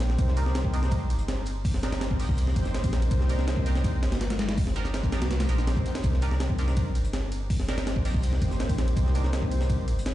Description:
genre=drum and bass, jungle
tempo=164 BPM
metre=4/4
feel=straight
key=C minor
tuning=A4 = 437 Hz
part: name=lush unison pad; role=sustained chords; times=0.0-9.6 s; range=Bb3 to C5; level=-35 LUFS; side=equal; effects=chorus
part: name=saturated sub bass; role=bass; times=0.0-10.1 s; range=G1 to C2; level=-26 LUFS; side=equal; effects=none
part: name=breakbeat sampler-style drum kit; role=drums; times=0.0-10.1 s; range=hi-hat, kick drum, ride cymbal, snare drum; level=-28 LUFS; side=equal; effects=none
part: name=crunchy breakbeat drum kit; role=drums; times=0.0-10.1 s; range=hi-hat, shaker, snare drum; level=-47 LUFS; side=left 3 dB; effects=high-pass filter on hats, high-pass filter on snare, high-pass filter on perc, high-pass filter on room
part: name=band-passed chord stab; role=stabs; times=0.4-9.3 s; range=D4 to Bb4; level=-40 LUFS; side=right 3 dB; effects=phaser, ensemble chorus, dub echo
room=little or no reverb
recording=played on a big sound system in a bare room, large studio reverb, nothing above 10.6 kHz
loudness=-24 LUFS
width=side -14 dB against mid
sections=0.0-10.1 A section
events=none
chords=0.0 Cm7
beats=| 0.19 0.55 0.92 1.28 | 1.65 2.02 2.38 2.75 | 3.11 3.48 3.84 4.21 | 4.58 4.94 5.31 5.67 | 6.04 6.41 6.77 7.14 | 7.50 7.87 8.23 8.60 | 8.97 9.33 9.70 10.06

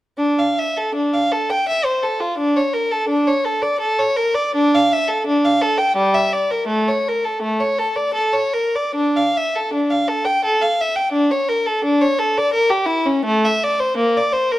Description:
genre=classical, baroque-style suite movement for unaccompanied violin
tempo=72-88 BPM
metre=3/4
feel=rubato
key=D minor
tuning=A4 = 437 Hz
part: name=rich violin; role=solo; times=0.2-14.6 s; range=G3 to G5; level=-16 LUFS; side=equal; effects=none
room=light reverb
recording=dark, warm production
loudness=-16 LUFS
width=side -15 dB against mid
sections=0.2-14.6 A section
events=none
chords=none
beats=| 0.19 0.95 1.68 | 2.39 3.11 3.82 | 4.57 5.29 5.98 | 6.70 7.43 8.16 | 8.97 9.73 10.45 | 11.14 11.83 12.52 | 13.24 13.97

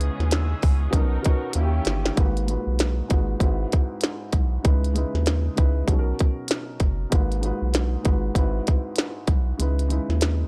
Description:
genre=hip hop, boom-bap hip-hop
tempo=97 BPM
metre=4/4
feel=swing 60% on 16ths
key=G# minor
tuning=A4 = 441 Hz
part: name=jazz flute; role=melody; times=0.0-1.5 s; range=C#6 to E6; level=-44 LUFS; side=equal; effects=high-pass filter, low-pass filter, analog delay
part: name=dark grand piano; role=accompaniment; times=0.0-10.5 s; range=G#2 to B4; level=-32 LUFS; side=equal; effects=high-pass filter, low-pass filter
part: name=rich studio string section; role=sustained chords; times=0.0-2.2 s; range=C#3 to A#4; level=-39 LUFS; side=equal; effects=high-pass filter, low-pass filter
part: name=round analog bass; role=bass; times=0.0-10.4 s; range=F#1 to D#2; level=-26 LUFS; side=equal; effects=none
part: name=minimal click drum kit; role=drums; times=0.0-10.4 s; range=hi-hat, kick drum, snare drum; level=-24 LUFS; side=equal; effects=none
room=small room ambience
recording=dry, gritty hardware recording, transformer saturation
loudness=-23 LUFS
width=mono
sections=0.0-2.2 A section; 2.2-10.5 B section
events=drum fill 1.6-2.2; kick muted 9.6-10.5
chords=0.0 C#m9; 0.9 Bmaj9; 1.6 D#7b9; 2.2 G#m9; 3.4 G#7alt; 4.6 C#m9; 5.9 Bmaj9; 7.1 G#m9; 8.4 G#7alt; 9.6 C#m9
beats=0.32 0.94 1.55 | 2.17 2.79 3.41 4.03 | 4.65 5.27 5.88 6.50 | 7.12 7.74 8.36 8.98 | 9.60 10.21

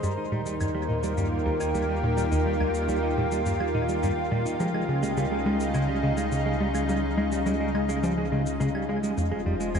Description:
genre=ambient, sequencer-driven space music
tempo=105 BPM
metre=4/4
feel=straight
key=unclear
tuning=A4 = 441 Hz
part: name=lush unison pad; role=sustained chords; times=0.0-9.8 s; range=Db3 to C5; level=-27 LUFS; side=equal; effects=chorus, shimmer reverb
part: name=clean electric guitar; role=arpeggios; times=0.0-9.8 s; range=G3 to Eb4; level=-32 LUFS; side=right 3 dB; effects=auto-pan, tape echo, shimmer reverb
part: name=tight sequencer bass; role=riff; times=0.0-9.8 s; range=Eb2 to Ab3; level=-29 LUFS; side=equal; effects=tape echo
part: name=warm sub bass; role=bass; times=0.0-9.8 s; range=F1 to Eb2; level=-33 LUFS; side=equal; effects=none
part: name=shaker and claves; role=percussion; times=0.0-9.8 s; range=none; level=-43 LUFS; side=left 2 dB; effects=tape echo
room=wet plate reverb, RT60 2.3 s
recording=echo-heavy mix, nothing above 10.9 kHz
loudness=-24 LUFS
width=side -6 dB against mid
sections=0.0-9.8 A section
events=none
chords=0.0 Eb; 4.6 Db; 9.2 Fm7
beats=| 0.03 0.60 1.18 1.75 | 2.32 2.89 3.46 4.03 | 4.60 5.17 5.75 6.32 | 6.89 7.46 8.03 8.60 | 9.18 9.75

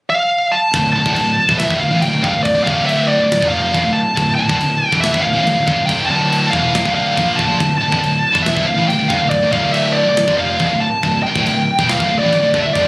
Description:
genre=heavy metal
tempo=140 BPM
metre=4/4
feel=straight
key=D minor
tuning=A4 = 439 Hz
part: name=high-gain lead guitar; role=melody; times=0.1-12.9 s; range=D5 to A5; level=-16 LUFS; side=equal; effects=distortion, digital delay
part: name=fuzz fingered electric bass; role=bass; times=0.7-12.9 s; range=D1 to Bb1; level=-21 LUFS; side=equal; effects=overdrive
part: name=tight metal drum kit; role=drums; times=0.7-12.9 s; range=crash cymbal, kick drum, snare drum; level=-23 LUFS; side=equal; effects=none
part: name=heavy high-gain guitar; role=riff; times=0.8-12.9 s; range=D2 to Bb3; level=-18 LUFS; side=equal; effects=distortion
room=small room ambience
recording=recorded on a phone in the room, club reverb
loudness=-12 LUFS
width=side -23 dB against mid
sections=0.7-12.9 A section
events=none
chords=0.0 N.C.; 0.7 Dm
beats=0.32 | 0.75 1.18 1.60 2.03 | 2.46 2.89 3.32 3.75 | 4.17 4.60 5.03 5.46 | 5.89 6.32 6.75 7.17 | 7.60 8.03 8.46 8.89 | 9.32 9.75 10.18 10.61 | 11.04 11.47 11.90 12.33 | 12.76

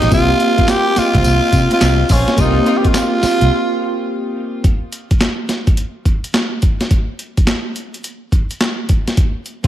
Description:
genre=R&B, new jack swing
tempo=106 BPM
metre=4/4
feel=swing 65% on 16ths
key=unclear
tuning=A4 = 440 Hz
part: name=growling tenor saxophone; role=melody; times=0.0-4.0 s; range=Db4 to G4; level=-16 LUFS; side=right 1 dB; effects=diffuse ambient delay
part: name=soft electric-piano-like synth keys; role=accompaniment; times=0.0-4.7 s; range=Bb3 to G4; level=-19 LUFS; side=left 1 dB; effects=chorus
part: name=vintage muted fingered electric bass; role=bass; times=0.0-3.5 s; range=Bb1 to C3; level=-16 LUFS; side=equal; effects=none
part: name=breakbeat sampler-style drum kit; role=drums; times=0.0-9.7 s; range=handclaps, hi-hat, kick drum, snare drum, tambourine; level=-15 LUFS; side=equal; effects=overdrive
part: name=warm studio string section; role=stabs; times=0.6-2.8, 9.6-9.7 s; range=Bb3 to F4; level=-24 LUFS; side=equal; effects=diffuse ambient delay
room=moderate plate reverb, RT60 1.5 s, digital ambience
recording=dreamy mix soaked in reverb, lossy compression artefacts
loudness=-13 LUFS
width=side -12 dB against mid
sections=0.0-4.6 A section; 4.6-9.7 B section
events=break 3.5-4.6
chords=0.1 C7sus4; 4.6 N.C.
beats=| 0.11 0.68 1.25 1.81 | 2.38 2.94 3.51 4.08 | 4.64 5.21 5.77 6.34 | 6.91 7.47 8.04 8.61 | 9.17

